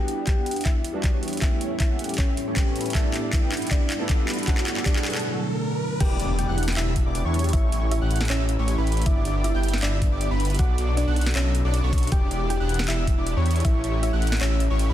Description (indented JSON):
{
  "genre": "future bass",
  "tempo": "157 BPM",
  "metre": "4/4",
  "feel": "half-time",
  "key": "E dorian",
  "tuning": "A4 = 439 Hz",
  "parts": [
    { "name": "thumb-piano-like synth pluck", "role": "melody", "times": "0.0-14.9 s", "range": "C#4 to G5", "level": "-32 LUFS", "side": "equal", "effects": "chorus, sidechain pumping, tape echo" },
    { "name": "felt-muted upright piano", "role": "accompaniment", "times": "0.0-6.0 s", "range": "G3 to G4", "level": "-35 LUFS", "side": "right 3 dB", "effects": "sidechain pumping" },
    { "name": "ethereal airy pad", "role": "sustained chords", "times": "0.5-6.0 s", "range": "E2 to E4", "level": "-34 LUFS", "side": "equal", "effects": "ensemble chorus, built-in reverb, sidechain pumping" },
    { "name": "big bright polysynth", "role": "riff", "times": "0.0-14.9 s", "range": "A3 to G5", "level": "-31 LUFS", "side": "right 1 dB", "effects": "analog chorus, sidechain pumping" },
    { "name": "riser and impact", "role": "sound effects", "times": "1.8-7.5 s", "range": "none", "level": "-35 LUFS", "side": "equal", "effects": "none" },
    { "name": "trap drum kit", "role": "drums", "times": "0.1-14.9 s", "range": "crash cymbal, handclaps, hi-hat, snare drum", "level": "-30 LUFS", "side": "equal", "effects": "none" },
    { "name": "electronic kick drum", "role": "drums", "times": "0.3-13.7 s", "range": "none", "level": "-22 LUFS", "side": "equal", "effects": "overdrive" },
    { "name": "airy dreamy lead", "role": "arpeggios", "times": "6.0-14.9 s", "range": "B5 to G6", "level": "-35 LUFS", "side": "left 1 dB", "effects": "chorus, sidechain pumping, digital delay" },
    { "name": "wide detuned saw bass", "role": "bass", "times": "6.0-14.9 s", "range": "E1 to A2", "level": "-23 LUFS", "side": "equal", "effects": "chorus, sidechain pumping" }
  ],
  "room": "light reverb",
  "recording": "dense, heavily limited modern master",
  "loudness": "-21 LUFS",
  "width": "side -12 dB against mid",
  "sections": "0.0-6.0 A section; 6.0-14.9 B section",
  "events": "build-up 0.0-6.0; drum fill 0.0-5.2; filter sweep on analog polysynth 0.0-6.0; riser 1.8-6.0; break 5.2-6.0; drop 6.0-14.9; impact 6.0-7.5",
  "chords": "0.0 Em7; 1.4 A7; 2.9 G6; 4.5 Bm7; 6.0 Em7; 7.5 A7; 9.1 G6; 10.6 Bm7; 12.1 Em7; 13.6 A7"
}